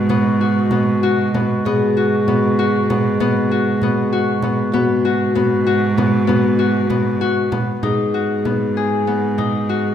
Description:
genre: contemporary instrumental, chamber music in an uneven meter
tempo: 194 BPM (eighths)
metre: 5/8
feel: straight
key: G# minor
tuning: A4 = 440 Hz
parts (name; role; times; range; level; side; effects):
- vibraphone with soft mallets; second line; 0.0-9.9 s; F#4 to G#4; -22 LUFS; left 3 dB; none
- mellow woodwind section; sustained chords; 0.0-7.8 s; B2 to F#4; -25 LUFS; right 2 dB; none
- Celtic harp; arpeggios; 0.0-9.9 s; B3 to G#4; -20 LUFS; left 6 dB; none
- clear cello; bass; 0.0-9.9 s; G#2; -19 LUFS; right 4 dB; none
- frame drum; percussion; 0.1-9.7 s; none; -25 LUFS; right 2 dB; none
room: wet recital hall reverb, RT60 1.4 s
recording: none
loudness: -15 LUFS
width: side -9 dB against mid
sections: 0.0-7.8 A section; 7.8-9.9 B section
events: none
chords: 0.0 G#m7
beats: | 0.09 0.40 0.71 1.02 1.34 | 1.65 1.97 2.28 2.58 2.89 | 3.20 3.51 3.82 4.12 4.43 | 4.74 5.04 5.35 5.66 5.97 | 6.28 6.58 6.89 7.21 7.52 | 7.83 8.14 8.46 8.77 9.07 | 9.38 9.69

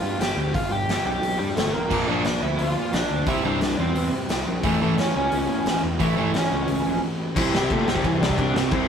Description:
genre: punk rock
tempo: 176 BPM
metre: 4/4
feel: straight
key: unclear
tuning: A4 = 440 Hz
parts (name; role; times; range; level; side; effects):
- lead guitar through a small cranked amp; melody; 0.0-8.9 s; E3 to G5; -25 LUFS; equal; overdrive
- fuzz picked electric bass; bass; 0.0-8.9 s; G1 to C3; -27 LUFS; equal; overdrive
- raw garage drum kit; drums; 0.2-8.8 s; crash cymbal, hi-hat, kick drum, ride cymbal, snare drum; -26 LUFS; equal; none
- distorted electric guitar; riff; 1.9-8.9 s; A2 to C5; -25 LUFS; left 3 dB; distortion
- fuzz guitar; riff; 1.9-8.9 s; A2 to C4; -32 LUFS; equal; none
- tight distorted guitar; riff; 1.9-6.3 s; A2 to C4; -28 LUFS; right 6 dB; distortion
room: light reverb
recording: rough rehearsal-room recording, tube saturation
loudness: -20 LUFS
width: side -7 dB against mid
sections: 0.0-7.4 A section; 7.4-8.9 B section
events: half time 0.0-7.4; break 7.0-7.4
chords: 0.0 G; 1.9 Bb; 3.3 C; 4.6 A; 7.4 C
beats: 0.20 | 0.54 0.88 1.22 1.56 | 1.91 2.25 2.59 2.93 | 3.27 3.61 3.95 4.29 | 4.63 4.97 5.31 5.65 | 5.99 6.33 6.67 7.01 | 7.35 7.69 8.03 8.37 | 8.71

